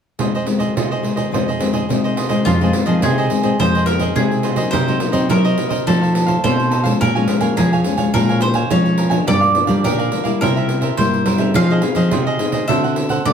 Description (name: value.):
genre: samba and choro.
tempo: 106 BPM.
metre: 4/4.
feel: straight.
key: F minor.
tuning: A4 = 440 Hz.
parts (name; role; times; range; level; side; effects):
cavaquinho; accompaniment; 0.2-13.3 s; D4 to Ab5; -24 LUFS; right 4 dB; none.
nylon-string guitar; accompaniment; 0.2-13.3 s; F2 to A4; -20 LUFS; left 6 dB; none.
pandeiro; percussion; 0.2-13.3 s; none; -22 LUFS; right 6 dB; none.
bowl-back mandolin; second line; 2.5-13.3 s; F4 to F5; -21 LUFS; right 1 dB; none.
nylon-string guitar; bass; 2.5-13.3 s; F2 to C4; -18 LUFS; equal; none.
room: light reverb.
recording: close, detailed microphones.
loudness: -14 LUFS.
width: side -7 dB against mid.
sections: 0.2-2.5 A section; 2.5-13.3 B section.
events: none.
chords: 0.2 Fm7; 4.7 Cm7b5; 5.9 F7; 7.0 Bbm7; 9.3 Gm7; 10.4 C7; 11.6 Fm7; 12.7 D7.